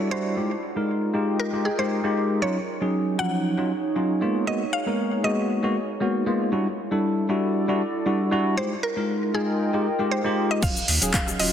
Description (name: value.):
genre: deep house.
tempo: 117 BPM.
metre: 4/4.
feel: swing 53% on 16ths.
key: unclear.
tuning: A4 = 440 Hz.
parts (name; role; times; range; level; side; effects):
mallet-like synth pluck; melody; 0.0-11.5 s; Ab4 to Gb5; -30 LUFS; equal; chorus, vintage 12-bit sampler grit, tape echo.
bell-like tine electric piano; stabs; 0.0-11.5 s; F3 to Bb4; -24 LUFS; equal; wide subtle chorus, sidechain pumping, low-pass filter, tape echo.
warbly tape-like pad; texture; 0.0-11.5 s; Eb4 to G5; -30 LUFS; right 1 dB; chorus, built-in reverb, sidechain pumping.
round analog bass; bass; 10.6-11.5 s; Eb1 to Eb2; -30 LUFS; equal; sidechain pumping.
deep house drum kit; drums; 10.6-11.5 s; cabasa, crash cymbal, handclaps, hi-hat, rim click; -22 LUFS; equal; overdrive, low-pass filter on hats, low-pass filter on cymbals, low-pass filter on perc, low-pass filter on snare.
electronic kick drum; drums; 10.6-11.2 s; none; -26 LUFS; equal; overdrive.
room: moderate lush hall reverb, RT60 2.0 s.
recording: dense, heavily limited modern master.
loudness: -22 LUFS.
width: side -9 dB against mid.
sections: 0.0-10.6 A section.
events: none.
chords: 0.4 Fm9; 2.4 Ebm9; 4.2 Abm9; 6.5 Em9; 8.6 Fm9; 10.6 Ebm9.